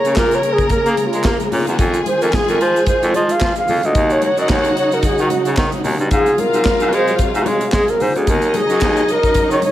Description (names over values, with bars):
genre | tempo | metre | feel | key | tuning
disco | 111 BPM | 4/4 | swing 56% on 16ths | Eb dorian | A4 = 440 Hz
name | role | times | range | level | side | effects
alto flute | melody | 0.0-9.7 s | F4 to F5 | -17 LUFS | equal | slapback echo
clear symphonic string section | second line | 0.0-9.7 s | Db4 to Bb5 | -24 LUFS | left 2 dB | none
dark symphonic string section | sustained chords | 0.0-9.7 s | C3 to Ab4 | -23 LUFS | right 2 dB | none
modern studio drum kit | drums | 0.0-9.7 s | handclaps, hi-hat, kick drum, snare drum | -20 LUFS | equal | gated reverb
breathy baritone saxophone | bass | 0.1-9.6 s | D2 to Bb3 | -19 LUFS | equal | none
tube shaker | percussion | 0.1-9.7 s | none | -38 LUFS | right 7 dB | none
congas | percussion | 0.2-9.7 s | none | -29 LUFS | left 7 dB | none
room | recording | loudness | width
light reverb, small room reverb | none | -13 LUFS | side -13 dB against mid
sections
0.0-9.7 A section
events
alto flute solo 0.0-9.7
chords
0.0 Bbm7; 1.8 Fm7; 4.0 Ebm7; 6.1 Ab7; 8.3 Ebm7